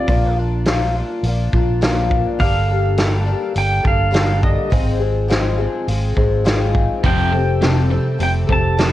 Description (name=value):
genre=folk rock and heartland rock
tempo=104 BPM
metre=4/4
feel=straight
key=unclear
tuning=A4 = 440 Hz
part: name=pedal steel guitar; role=melody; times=0.0-8.9 s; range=D5 to A5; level=-22 LUFS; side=right 2 dB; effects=none
part: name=picked twelve-string acoustic guitar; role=accompaniment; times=0.0-8.9 s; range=F2 to A4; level=-21 LUFS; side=left 4 dB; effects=wide subtle chorus
part: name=fingered electric bass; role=bass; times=0.1-8.9 s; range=F1 to Bb1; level=-19 LUFS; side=equal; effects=none
part: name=loose indie drum kit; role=drums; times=0.1-8.9 s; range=hi-hat, kick drum, snare drum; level=-20 LUFS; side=equal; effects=none
part: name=crunchy overdriven guitar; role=riff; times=7.0-8.9 s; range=F2 to F3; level=-21 LUFS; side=right 1 dB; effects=none
room=light reverb, small room reverb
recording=worn, warbling old tape, cassette tape, warbly pitch drift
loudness=-15 LUFS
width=side -14 dB against mid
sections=0.0-8.9 A section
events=none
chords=0.1 Bb; 2.4 Gmadd9; 4.7 Ab6; 7.0 Fadd9